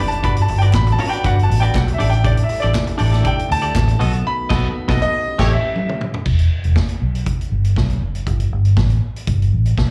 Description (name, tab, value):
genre	disco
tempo	120 BPM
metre	4/4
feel	straight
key	E dorian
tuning	A4 = 440 Hz
part	clear grand piano	melody	0.0-6.0 s	D5 to B5	-24 LUFS	equal	plate reverb, slapback echo, tape echo
part	semi-hollow electric guitar	accompaniment	0.0-5.6 s	A3 to D#5	-27 LUFS	equal	warbly pitch drift, plate reverb, slapback echo
part	mellow French horn section	sustained chords	0.0-6.3 s	D3 to G4	-33 LUFS	equal	plate reverb
part	vintage muted fingered electric bass	bass	0.0-9.9 s	E1 to D2	-18 LUFS	equal	none
part	vintage drum kit	drums	0.1-9.9 s	crash cymbal, hi-hat, kick drum, snare drum, toms	-24 LUFS	equal	none
part	group handclap	percussion	0.7-3.9 s	none	-36 LUFS	equal	slapback echo
part	warm horn section	stabs	5.4-5.5 s	A3 to C#5	-27 LUFS	equal	plate reverb, slapback echo
room	light reverb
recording	live gig heard through the venue's PA, club reverb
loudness	-17 LUFS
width	mono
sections	0.0-6.3 A section; 6.3-9.9 B section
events	grand piano solo 0.0-6.3; band accent 4.3-6.3; drum fill 5.8-6.3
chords	0.2 Gmaj7; 2.0 A7sus4; 4.0 B7; 5.3 A7; 6.3 Em; 8.3 N.C.